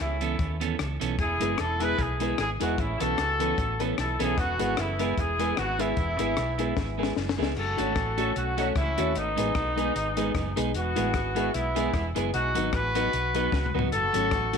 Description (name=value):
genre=ska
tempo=151 BPM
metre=4/4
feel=swing 56% on 8ths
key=E major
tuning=A4 = 440 Hz
part: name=clear horn section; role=melody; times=0.0-14.6 s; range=B3 to B4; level=-28 LUFS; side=left 1 dB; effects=none
part: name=hollow-body short-scale fingered electric bass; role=bass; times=0.0-14.6 s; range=E1 to D#2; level=-31 LUFS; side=equal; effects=transformer saturation
part: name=clean electric guitar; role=accompaniment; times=0.2-14.6 s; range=E3 to A4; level=-31 LUFS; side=right 12 dB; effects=tape echo
part: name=compact cocktail drum kit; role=drums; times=0.2-14.6 s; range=crash cymbal, hi-hat, kick drum, rim click, snare drum, toms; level=-32 LUFS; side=left 4 dB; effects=none
part: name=dark upright piano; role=stabs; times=1.4-14.6 s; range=C#4 to C#5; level=-33 LUFS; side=left 12 dB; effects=none
room=moderate echo chamber reverb, RT60 1.4 s, studio ambience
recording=1960s-style stereo with parts hard left and right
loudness=-24 LUFS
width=side -6 dB against mid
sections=0.0-7.6 A section; 7.6-14.6 B section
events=drum fill 6.8-7.6, 13.5-13.9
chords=0.0 Aadd9; 1.2 E; 2.8 Aadd9; 4.4 E; 7.6 F#m; 9.2 G#m; 10.7 E; 12.3 B; 13.9 F#m